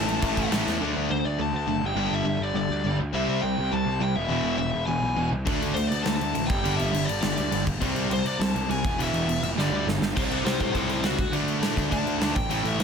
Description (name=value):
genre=punk rock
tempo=205 BPM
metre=4/4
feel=straight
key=unclear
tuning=A4 = 440 Hz
part: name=biting lead guitar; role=melody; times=0.0-12.8 s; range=E4 to A5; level=-30 LUFS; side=left 2 dB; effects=overdrive, ping-pong delay
part: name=distorted electric guitar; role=riff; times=0.0-12.8 s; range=E2 to D4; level=-31 LUFS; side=left 11 dB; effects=overdrive
part: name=overdriven electric guitar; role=riff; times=0.0-12.8 s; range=E2 to D4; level=-31 LUFS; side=left 1 dB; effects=none
part: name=sludgy distorted guitar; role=riff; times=0.0-12.8 s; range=E2 to D4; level=-31 LUFS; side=right 12 dB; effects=overdrive
part: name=fuzz picked electric bass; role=bass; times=0.0-12.8 s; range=E1 to A2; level=-30 LUFS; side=equal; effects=overdrive
part: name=big rock drum kit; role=drums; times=0.1-0.7, 5.5-12.8 s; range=crash cymbal, kick drum, snare drum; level=-29 LUFS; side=equal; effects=none
room=light reverb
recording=none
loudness=-23 LUFS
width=side -6 dB against mid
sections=0.8-10.2 A section; 10.2-12.8 B section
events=drum fill 0.7, 9.6-10.2; half time 0.8-10.2; lead electric guitar solo 10.2-12.8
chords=0.0 A5; 0.8 D5; 1.8 G5; 3.1 C; 4.2 E; 5.5 D5; 6.5 G5; 7.8 C5; 8.8 E5; 9.6 G5; 10.2 C; 11.2 D5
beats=0.22 0.51 | 0.81 1.10 1.39 1.68 | 1.97 2.27 2.56 2.85 | 3.14 3.44 3.73 4.02 | 4.31 4.60 4.90 5.19 | 5.48 5.77 6.07 6.36 | 6.65 6.95 7.24 7.53 | 7.82 8.12 8.41 8.70 | 8.99 9.29 9.58 9.87 | 10.17 10.46 10.75 11.05 | 11.34 11.63 11.93 12.22 | 12.51 12.81